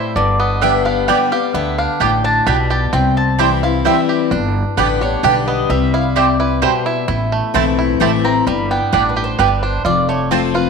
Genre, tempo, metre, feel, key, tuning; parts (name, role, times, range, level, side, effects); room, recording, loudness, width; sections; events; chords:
bluegrass; 130 BPM; 3/4; straight; A4 = 440 Hz
bluegrass banjo; melody; 0.0-10.7 s; D3 to G4; -22 LUFS; right 6 dB
mandolin; melody; 0.0-10.7 s; B4 to B5; -20 LUFS; equal
picked steel-string acoustic guitar; accompaniment; 0.0-10.7 s; F2 to G4; -18 LUFS; left 10 dB
upright bass; bass; 0.2-10.7 s; F1 to D2; -20 LUFS; right 2 dB
mandolin; stabs; 0.6-10.4 s; A3 to A5; -19 LUFS; right 12 dB
moderate echo chamber reverb, RT60 1.9 s, studio reverb; 1960s-style stereo with parts hard left and right; -13 LUFS; side -5 dB against mid
0.0-4.3 A section; 4.3-10.7 B section
0.2 G; 2.9 C; 4.3 G; 5.7 C; 7.1 Am; 8.5 G; 9.8 F